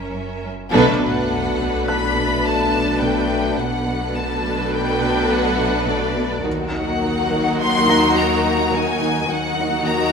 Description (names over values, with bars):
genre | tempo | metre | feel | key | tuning
cinematic, suspense film score | 105 BPM | 5/4 | straight | unclear | A4 = 441 Hz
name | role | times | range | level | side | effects
rich symphonic violin section | melody | 0.0-10.1 s | D5 to C6 | -23 LUFS | left 2 dB | none
warm symphonic violin section | second line | 0.0-10.1 s | F#4 to B4 | -24 LUFS | left 1 dB | none
rich symphonic viola section | accompaniment | 0.0-10.1 s | F#3 to D#4 | -25 LUFS | right 1 dB | none
warm symphonic cello section | bass | 0.0-10.1 s | D#2 to B2 | -28 LUFS | right 2 dB | none
deep rumbling drone | drone | 0.0-10.1 s | F#1 to D#2 | -32 LUFS | equal | built-in reverb
felt-muted upright piano | texture | 0.0-10.1 s | A5 to A#6 | -32 LUFS | right 1 dB | none
rich symphonic cello section | riff | 0.1-10.0 s | F#2 to D#4 | -27 LUFS | right 2 dB | none
dark French horn section | sustained chords | 0.7-10.1 s | A3 to D#4 | -25 LUFS | left 6 dB | none
rich symphonic double bass section | bass | 0.7-10.1 s | B1 to D#2 | -30 LUFS | right 4 dB | none
sub drop | sound effects | 0.7-3.6 s | none | -34 LUFS | equal | none
room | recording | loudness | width
wet scoring stage reverb, RT60 1.6 s | none | -17 LUFS | side -6 dB against mid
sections
0.7-10.1 A section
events
band accent 0.7-1.3; impact 0.7-3.6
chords
0.0 F#7; 0.7 Bm7; 6.5 D#m